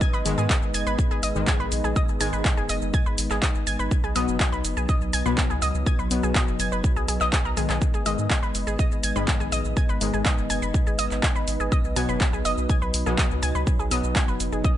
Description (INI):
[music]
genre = melodic techno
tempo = 123 BPM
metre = 4/4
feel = straight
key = G# minor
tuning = A4 = 441 Hz
[part]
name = dark analog pad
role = sustained chords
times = 0.0-14.8 s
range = F#3 to D#5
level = -31 LUFS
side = equal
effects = chorus, sidechain pumping
[part]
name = analog pluck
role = arpeggios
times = 0.0-14.7 s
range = G#4 to G#6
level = -29 LUFS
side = equal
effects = chorus, sidechain pumping, ping-pong delay
[part]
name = electronic kick drum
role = drums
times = 0.0-14.7 s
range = none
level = -23 LUFS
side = equal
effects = none
[part]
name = punchy analog drum machine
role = drums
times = 0.0-14.7 s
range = handclaps, hi-hat, shaker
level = -28 LUFS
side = equal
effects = none
[part]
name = round analog bass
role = bass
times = 0.1-14.6 s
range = F#1 to G#2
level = -28 LUFS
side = equal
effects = sidechain pumping
[part]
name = synth brass stab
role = stabs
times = 0.3-14.8 s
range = G#2 to B3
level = -30 LUFS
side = left 4 dB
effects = chorus, sidechain pumping, ping-pong delay
[sound]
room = digital ambience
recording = nothing above 10.7 kHz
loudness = -21 LUFS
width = side -12 dB against mid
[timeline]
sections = 0.0-14.8 A section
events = drum fill 7.3-7.8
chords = 0.0 G#m; 3.9 B; 7.8 G#m; 11.7 B